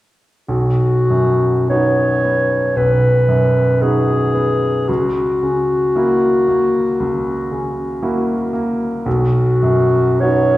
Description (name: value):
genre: classical, romantic duo for clarinet and grand piano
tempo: 48-59 BPM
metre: 4/4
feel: rubato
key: B major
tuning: A4 = 440 Hz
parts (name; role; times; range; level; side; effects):
- mellow clarinet; melody; 0.5-10.6 s; F#4 to C#5; -16 LUFS; left 1 dB; none
- clear grand piano; accompaniment; 0.5-10.6 s; B1 to F#4; -16 LUFS; equal; none
room: wet recital hall reverb, RT60 1.3 s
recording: heard from further back in the room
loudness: -14 LUFS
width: side -16 dB against mid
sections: 0.5-10.6 A section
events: none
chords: 0.5 B; 4.9 F#7/C#; 9.1 B